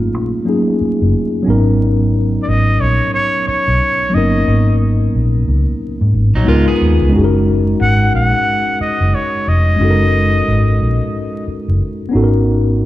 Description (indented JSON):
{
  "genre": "R&B, neo-soul",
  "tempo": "90 BPM",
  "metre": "4/4",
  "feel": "swing 60% on 16ths",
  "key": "F# major",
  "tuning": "A4 = 441 Hz",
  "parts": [
    { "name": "mellow tine electric piano", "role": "accompaniment", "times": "0.0-12.9 s", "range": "F#3 to A#4", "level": "-17 LUFS", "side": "left 1 dB", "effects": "medium stereo tremolo" },
    { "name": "vintage muted fingered electric bass", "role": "bass", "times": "0.0-12.9 s", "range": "E#1 to G#2", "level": "-14 LUFS", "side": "equal", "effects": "none" },
    { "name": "trumpet with straight mute", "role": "melody", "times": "2.4-11.5 s", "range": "C#5 to F#5", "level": "-17 LUFS", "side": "equal", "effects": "none" },
    { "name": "electric guitar at the edge of break-up", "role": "second line", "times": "6.4-7.1 s", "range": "F#3 to G#4", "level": "-22 LUFS", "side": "right 2 dB", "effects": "none" }
  ],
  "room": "moderate concert hall reverb, RT60 2.4 s",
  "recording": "recorded in a church or concert hall, vinyl crackle",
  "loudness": "-12 LUFS",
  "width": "side -15 dB against mid",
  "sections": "0.0-12.9 A section",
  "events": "none",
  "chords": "0.0 F#69; 1.5 G#m11; 6.5 C#13; 7.1 F#69; 12.1 G#m11"
}